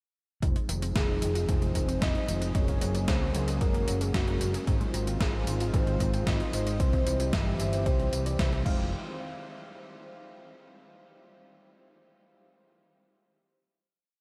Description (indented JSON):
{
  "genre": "italo disco",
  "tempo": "113 BPM",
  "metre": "4/4",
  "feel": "straight",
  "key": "F phrygian",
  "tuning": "A4 = 440 Hz",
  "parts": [
    { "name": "warm analog pad", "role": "sustained chords", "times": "0.4-8.9 s", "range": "Eb3 to Ab4", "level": "-39 LUFS", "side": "equal", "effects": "chorus" },
    { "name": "analog pluck", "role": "arpeggios", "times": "0.4-8.9 s", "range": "Eb3 to C5", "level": "-43 LUFS", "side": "equal", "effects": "none" },
    { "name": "mellow synth brass", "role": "stabs", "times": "0.4-8.9 s", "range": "G3 to C5", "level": "-42 LUFS", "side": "equal", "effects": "none" },
    { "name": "overdriven fingered electric bass", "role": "bass", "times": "0.4-8.9 s", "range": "F1 to Db2", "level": "-33 LUFS", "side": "equal", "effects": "none" },
    { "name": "electronic kick drum", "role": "drums", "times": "0.4-8.8 s", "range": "none", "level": "-32 LUFS", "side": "equal", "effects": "none" },
    { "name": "gated 80s digital drum machine", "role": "drums", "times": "0.4-8.8 s", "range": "crash cymbal, hi-hat, snare drum, tambourine", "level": "-38 LUFS", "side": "equal", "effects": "gated reverb, gated reverb snare, overdrive" },
    { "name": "soft octave-layered synth lead", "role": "melody", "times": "1.0-8.9 s", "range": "Gb4 to F5", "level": "-38 LUFS", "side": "equal", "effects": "chorus, phaser, analog delay" }
  ],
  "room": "moderate huge ambient reverb, RT60 7.6 s",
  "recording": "dreamy mix soaked in reverb",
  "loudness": "-28 LUFS",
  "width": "mono",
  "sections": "0.4-8.9 verse; 8.9-11.0 final hit",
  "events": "none",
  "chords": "0.4 Fm7; 2.5 Gbadd9; 4.7 Ab6; 6.8 C; 8.7 Fm7; 8.9 N.C."
}